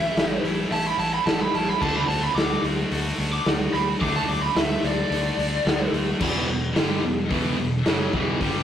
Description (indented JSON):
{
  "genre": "hard rock",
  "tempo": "109 BPM",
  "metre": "4/4",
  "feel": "straight",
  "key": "E dorian",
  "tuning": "A4 = 440 Hz",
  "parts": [
    { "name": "lead guitar through a small cranked amp", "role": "melody", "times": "0.0-5.9 s", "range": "D5 to D6", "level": "-26 LUFS", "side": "right 2 dB", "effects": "overdrive" },
    { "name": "heavy high-gain guitar", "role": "riff", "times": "0.0-8.6 s", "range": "E2 to F#4", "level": "-29 LUFS", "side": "left 1 dB", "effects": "distortion" },
    { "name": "picked electric bass", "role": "bass", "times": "0.0-8.6 s", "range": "E1 to D2", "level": "-29 LUFS", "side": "equal", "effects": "none" },
    { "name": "raw garage drum kit", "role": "drums", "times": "0.2-8.5 s", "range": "crash cymbal, hi-hat, kick drum, snare drum", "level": "-24 LUFS", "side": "equal", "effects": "none" },
    { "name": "distorted electric guitar", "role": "riff", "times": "1.8-8.6 s", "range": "E2 to D4", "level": "-30 LUFS", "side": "right 3 dB", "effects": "distortion" },
    { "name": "scooped high-gain guitar", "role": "riff", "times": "1.8-8.6 s", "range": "E2 to D4", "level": "-32 LUFS", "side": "left 6 dB", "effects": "distortion" }
  ],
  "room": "light reverb",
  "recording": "rough rehearsal-room recording, tube saturation",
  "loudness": "-21 LUFS",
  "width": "side -9 dB against mid",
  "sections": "0.0-6.2 A section; 6.2-8.6 B section",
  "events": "lead electric guitar solo 0.0-6.2",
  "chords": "0.0 A; 1.8 D; 6.2 Em"
}